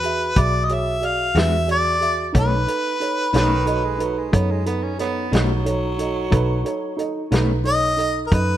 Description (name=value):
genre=slow blues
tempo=60 BPM (dotted quarters)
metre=12/8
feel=straight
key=B mixolydian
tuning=A4 = 440 Hz
part: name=warm harmonica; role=melody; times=0.0-8.6 s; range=A#4 to E#5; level=-21 LUFS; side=equal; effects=none
part: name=dark baby grand piano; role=accompaniment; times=0.0-8.6 s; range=D#4 to E5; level=-25 LUFS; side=right 4 dB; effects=none
part: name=vintage muted picked electric bass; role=bass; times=0.0-8.6 s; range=B1 to F#2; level=-22 LUFS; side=equal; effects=none
part: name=warm soul drum kit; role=drums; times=0.0-8.5 s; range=hi-hat, kick drum, snare drum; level=-22 LUFS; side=equal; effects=none
part: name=electric guitar through a small old amp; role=accompaniment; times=1.4-7.5 s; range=B2 to F#4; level=-28 LUFS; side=left 4 dB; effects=tremolo
part: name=growling tenor saxophone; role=second line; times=3.4-7.3 s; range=D#3 to C#4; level=-28 LUFS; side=right 3 dB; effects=analog delay
room=light reverb, studio ambience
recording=rough home demo mix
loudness=-18 LUFS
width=side -12 dB against mid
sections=0.0-8.6 A section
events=none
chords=0.0 E9; 2.3 B9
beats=0.36 1.35 | 2.35 3.34 4.33 5.33 | 6.33 7.32 8.32